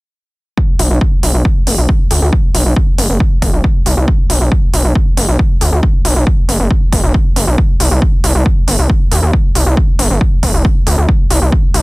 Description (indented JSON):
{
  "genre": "driving peak-time techno",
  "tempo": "137 BPM",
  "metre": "4/4",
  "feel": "straight",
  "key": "B phrygian",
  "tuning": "A4 = 440 Hz",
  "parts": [
    { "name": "electronic kick drum", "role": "drums", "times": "0.6-11.6 s", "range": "none", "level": "-12 LUFS", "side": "equal", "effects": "overdrive" },
    { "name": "gritty driven synth bass", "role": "bass", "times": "0.8-11.8 s", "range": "F#1 to Eb2", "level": "-12 LUFS", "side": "equal", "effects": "sidechain pumping" },
    { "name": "electronic hi-hat", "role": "drums", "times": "0.8-11.8 s", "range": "none", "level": "-18 LUFS", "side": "equal", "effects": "overdrive, sidechain pumping on hats" }
  ],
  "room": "little or no reverb",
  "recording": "dense, heavily limited modern master",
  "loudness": "-10 LUFS",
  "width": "side -22 dB against mid",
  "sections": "0.6-11.8 A section",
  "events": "none",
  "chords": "none",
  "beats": "| 0.58 1.01 1.45 1.89 | 2.33 2.77 3.20 3.64 | 4.08 4.52 4.96 5.39 | 5.83 6.27 6.71 7.14 | 7.58 8.02 8.46 8.90 | 9.34 9.77 10.21 10.65 | 11.09 11.53"
}